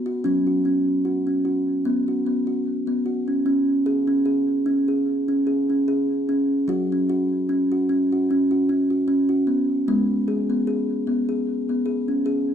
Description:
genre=world meditative, meditative tuned percussion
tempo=75 BPM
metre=4/4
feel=swing 55% on 16ths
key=unclear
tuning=A4 = 441 Hz
part: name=kalimba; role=solo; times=0.0-12.5 s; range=F#3 to G#4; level=-20 LUFS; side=equal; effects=diffuse ambient delay
room=wet recital hall reverb, RT60 1.3 s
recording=none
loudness=-20 LUFS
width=side -8 dB against mid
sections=0.0-3.5 A section; 3.5-12.5 B section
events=none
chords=0.2 F#5; 1.9 B5; 3.5 C#5; 6.7 F#5; 9.9 G#m

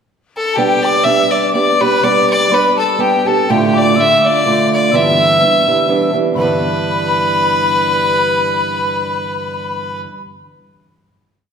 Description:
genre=celtic folk, Celtic waltz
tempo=125 BPM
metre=3/4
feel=swing 54% on 8ths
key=G mixolydian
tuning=A4 = 440 Hz
part: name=rich fiddle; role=melody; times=0.4-10.0 s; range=G4 to E5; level=-14 LUFS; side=left 1 dB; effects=none
part: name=mellow tin whistle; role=second line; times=0.5-10.0 s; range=G5 to E6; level=-19 LUFS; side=left 5 dB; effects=none
part: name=fingerpicked acoustic archtop guitar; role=accompaniment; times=0.6-10.1 s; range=D2 to G4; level=-16 LUFS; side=right 3 dB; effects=none
room=wet recital hall reverb, RT60 1.5 s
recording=recorded in a church or concert hall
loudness=-11 LUFS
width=side -7 dB against mid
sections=0.0-0.6 pickup bar; 0.6-6.4 A section; 6.4-9.2 final chord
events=none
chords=0.0 N.C.; 0.6 G; 3.5 Dm; 4.9 G6

